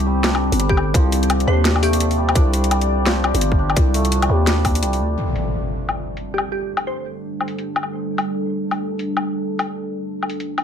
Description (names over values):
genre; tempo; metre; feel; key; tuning
half-time drum and bass; 170 BPM; 4/4; swing 59% on 16ths, half-time; unclear; A4 = 440 Hz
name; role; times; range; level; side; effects
deep dark ambient pad; sustained chords; 0.0-10.6 s; G3 to D5; -25 LUFS; left 1 dB; chorus, built-in reverb, sidechain pumping
santur; arpeggios; 0.0-8.4 s; F3 to G4; -26 LUFS; right 2 dB; vintage 12-bit sampler grit, tape echo
growling 808-style bass; bass; 0.0-5.2 s; G1 to Eb2; -18 LUFS; equal; none
drum and bass drum kit; drums; 0.2-10.6 s; hi-hat, snare drum, woodblock; -22 LUFS; left 2 dB; overdrive, low-pass filter on hats, studio ambience, low-pass filter on perc, low-pass filter on snare
glassy wavetable pluck; melody; 0.7-2.1, 6.3-7.2 s; G4 to C5; -28 LUFS; left 1 dB; chorus, vintage 12-bit sampler grit, tape echo
electronic kick drum; drums; 0.7-4.7 s; none; -17 LUFS; equal; overdrive, studio ambience
impact; sound effects; 5.2-6.6 s; none; -26 LUFS; equal; none
room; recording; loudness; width
light reverb, digital ambience; none; -17 LUFS; side -8 dB against mid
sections
0.0-5.2 A section; 5.2-10.6 B section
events
drop 0.0-5.2; impact 5.2-6.6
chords
0.0 Cm; 5.2 G5